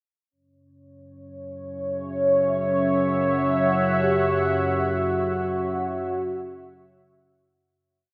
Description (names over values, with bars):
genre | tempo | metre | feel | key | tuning
dark ambient drone | free time | none | none | unclear | A4 = 440 Hz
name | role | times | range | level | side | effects
deep dark ambient pad | sustained chords | 1.7-7.7 s | C#5 to F#5 | -26 LUFS | equal | chorus, built-in reverb
analog drone | drone | 1.6-7.8 s | F#2 to C#3 | -30 LUFS | equal | chorus, phaser
mellow horn-like synth lead | melody | 4.0-7.2 s | F#4 to G4 | -29 LUFS | equal | chorus, diffuse ambient delay
room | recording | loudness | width
wet huge ambient reverb, RT60 8.0 s | none | -23 LUFS | mono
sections
0.3-7.7 A section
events
fade-in on synth drone 0.3-7.7; fade-out 4.0-7.7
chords
0.3 F#5